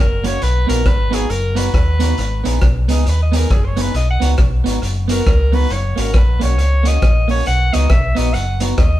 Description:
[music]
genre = ska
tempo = 136 BPM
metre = 4/4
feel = swing 61% on 8ths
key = unclear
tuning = A4 = 440 Hz
[part]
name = bright alto saxophone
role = melody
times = 0.0-9.0 s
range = G#4 to F#5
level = -22 LUFS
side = equal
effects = none
[part]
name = fingered electric bass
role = bass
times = 0.0-9.0 s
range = F#1 to D#2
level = -16 LUFS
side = equal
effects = tube saturation
[part]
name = electric guitar through a small old amp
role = accompaniment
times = 0.2-8.7 s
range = A#3 to G#4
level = -23 LUFS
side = right 2 dB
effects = spring reverb
[part]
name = raw garage drum kit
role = drums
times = 0.2-8.9 s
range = hi-hat, kick drum, rim click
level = -18 LUFS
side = equal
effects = none
[sound]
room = light reverb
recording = band playing live in one room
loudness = -13 LUFS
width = side -14 dB against mid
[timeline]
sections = 0.0-9.0 A section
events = alto saxophone solo 0.0-9.0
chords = 0.4 B; 2.2 G#m; 3.9 B; 5.7 F#; 7.5 B

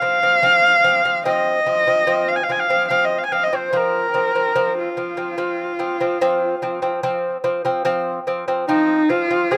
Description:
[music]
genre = mongolian traditional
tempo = 73 BPM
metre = 4/4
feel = straight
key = unclear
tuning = A4 = 440 Hz
[part]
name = rich horsehead fiddle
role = melody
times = 0.0-9.6 s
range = Eb4 to Ab5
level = -20 LUFS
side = equal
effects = none
[part]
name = lute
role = arpeggios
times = 0.0-9.6 s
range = F3 to C4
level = -24 LUFS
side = equal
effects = none
[sound]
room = little or no reverb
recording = recorded outdoors, with no room sound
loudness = -19 LUFS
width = mono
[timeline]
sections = 0.0-8.7 A section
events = none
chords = 0.0 F5

